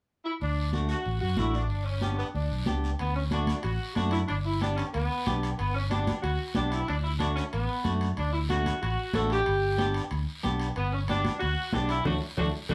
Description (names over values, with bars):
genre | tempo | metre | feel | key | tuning
latin, cumbia | 185 BPM | 4/4 | straight | D major | A4 = 440 Hz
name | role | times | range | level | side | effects
mellow saxophone section | melody | 0.2-12.7 s | A3 to A4 | -34 LUFS | equal | none
fingered electric bass | bass | 0.4-12.7 s | G1 to F#2 | -32 LUFS | equal | none
guiro | percussion | 0.4-12.7 s | none | -47 LUFS | equal | none
clean electric guitar | accompaniment | 0.7-12.7 s | A3 to G4 | -35 LUFS | equal | harmonic tremolo
congas | percussion | 0.7-12.7 s | none | -35 LUFS | equal | none
timbales | percussion | 3.0-12.7 s | none | -44 LUFS | equal | none
room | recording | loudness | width
wet studio ambience, RT60 0.5 s | heard from further back in the room | -29 LUFS | mono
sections
0.4-3.0 A section; 3.0-12.7 B section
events
drum fill 12.1-12.7; band accent 12.1-12.7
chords
0.4 D; 1.7 G; 3.0 D; 4.3 G; 6.9 D; 9.5 G; 12.1 D